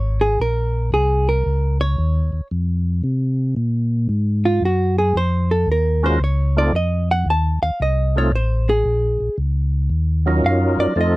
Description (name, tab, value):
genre	jazz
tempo	113 BPM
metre	4/4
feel	swing 67% on 8ths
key	Bb minor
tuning	A4 = 441 Hz
part	hollow-body jazz guitar	accompaniment	0.0-11.2 s	F4 to A5	-21 LUFS	right 1 dB	none
part	mellow tonewheel organ	bass	0.0-11.2 s	Ab1 to C3	-18 LUFS	equal	chorus vibrato, slow rotary speaker
part	percussive tonewheel organ	melody	6.0-11.2 s	Gb3 to Bb4	-18 LUFS	right 1 dB	slow rotary speaker, overdrive, chorus vibrato
room	little or no reverb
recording	dry, close 1970s-style studio recording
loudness	-16 LUFS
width	side -19 dB against mid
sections	0.0-11.2 A section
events	hollow-body jazz guitar solo 0.0-11.2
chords	0.4 Bbm7; 4.6 Gbmaj7; 6.7 F7; 8.9 Bbm7; 9.9 Ebm7